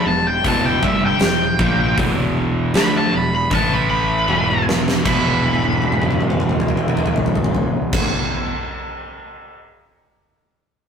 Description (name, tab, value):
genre	blues rock power trio and southern rock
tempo	78 BPM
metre	4/4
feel	straight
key	E minor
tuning	A4 = 440 Hz
part	octave-fuzz lead guitar	melody	0.0-8.0 s	E5 to B5	-20 LUFS	equal	distortion
part	crunchy overdriven guitar	riff	0.0-8.6 s	E2 to D4	-22 LUFS	equal	none
part	fuzz fingered electric bass	bass	0.0-8.0 s	E1 to D2	-22 LUFS	equal	overdrive
part	huge arena drum kit	drums	0.4-9.6 s	crash cymbal, hi-hat, kick drum, snare drum, toms	-20 LUFS	equal	none
room	moderate stone room reverb, RT60 1.1 s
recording	rough rehearsal-room recording, tube saturation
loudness	-15 LUFS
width	side -7 dB against mid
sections	0.0-5.0 A section; 5.0-8.1 B section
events	drum fill 4.3-5.0, 5.4-7.9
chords	0.0 Em; 3.5 A5; 4.3 E5